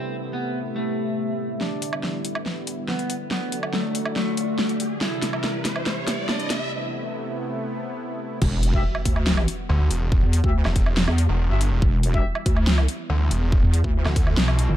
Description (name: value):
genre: heavy wobble dubstep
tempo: 141 BPM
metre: 4/4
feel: half-time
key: E minor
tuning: A4 = 441 Hz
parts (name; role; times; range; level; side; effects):
- electric guitar at the edge of break-up; melody; 0.0-6.5 s; A3 to E4; -29 LUFS; left 1 dB; low-pass filter, digital delay
- lush unison pad; sustained chords; 0.0-14.8 s; C3 to F#4; -32 LUFS; equal; chorus, sidechain pumping
- deep dark ambient pad; texture; 0.0-6.7 s; A3 to C6; -35 LUFS; right 2 dB; chorus, built-in reverb, sidechain pumping
- dubstep drum kit; drums; 1.6-14.7 s; crash cymbal, hi-hat, snare drum, woodblock; -27 LUFS; equal; none
- riser and impact; sound effects; 3.2-10.1 s; none; -33 LUFS; equal; none
- wobble bass; bass; 8.4-14.8 s; E1 to E2; -20 LUFS; equal; chorus, overdrive
- electronic kick drum; drums; 8.4-14.2 s; none; -21 LUFS; equal; none
- dark brass ensemble; stabs; 8.7-12.2 s; F#4 to E5; -33 LUFS; left 4 dB; digital delay
- snarling distorted saw bass; bass; 9.7-14.7 s; E1 to D2; -21 LUFS; equal; distortion, overdrive
room: light reverb, digital ambience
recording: dark, warm production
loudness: -21 LUFS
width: side -12 dB against mid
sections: 0.0-1.6 A section; 1.6-8.4 B section; 8.4-14.8 C section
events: build-up 1.6-8.4; drum fill 1.6-6.7; filter sweep on analog synth pad 1.6-8.4; filter sweep on clean electric guitar 1.6-8.4; riser 3.2-6.7; break 6.7-8.4; drop 8.4-14.8; impact 8.4-10.1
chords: 0.0 Amadd9; 1.6 Em7; 3.3 D; 5.0 C; 6.7 Amadd9; 8.4 Emadd9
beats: 0.33 0.76 1.18 | 1.61 2.03 2.46 2.88 | 3.31 3.74 4.16 4.59 | 5.01 5.44 5.86 6.29 | 6.71 7.14 7.57 7.99 | 8.42 8.84 9.27 9.69 | 10.12 10.54 10.97 11.39 | 11.82 12.25 12.67 13.10 | 13.52 13.95 14.37